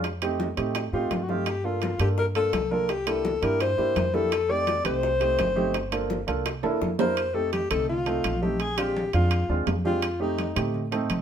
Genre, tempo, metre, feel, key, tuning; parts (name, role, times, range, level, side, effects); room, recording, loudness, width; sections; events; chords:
Afro-Cuban jazz; 168 BPM; 4/4; straight; F mixolydian; A4 = 440 Hz
dark baby grand piano; accompaniment; 0.0-11.2 s; Ab3 to Bb4; -29 LUFS; right 4 dB
upright bass; bass; 0.0-11.2 s; G1 to A2; -30 LUFS; equal
bongos; percussion; 0.0-7.2 s; -36 LUFS; left 5 dB
congas; percussion; 0.0-11.2 s; -34 LUFS; left 1 dB
timbales; percussion; 0.0-11.2 s; -32 LUFS; right 6 dB
breathy alto saxophone; melody; 0.9-10.7 s; Eb4 to D5; -26 LUFS; left 3 dB
moderate studio reverb, RT60 0.8 s; band playing live in one room; -23 LUFS; side -8 dB against mid
0.0-7.2 A section; 7.2-11.2 A section
drum fill 6.6-7.2
0.0 F7; 1.5 Gm7; 2.9 C7; 4.3 F7; 5.7 Gm7; 6.5 C13; 7.2 F7; 8.6 Bb7; 10.0 F7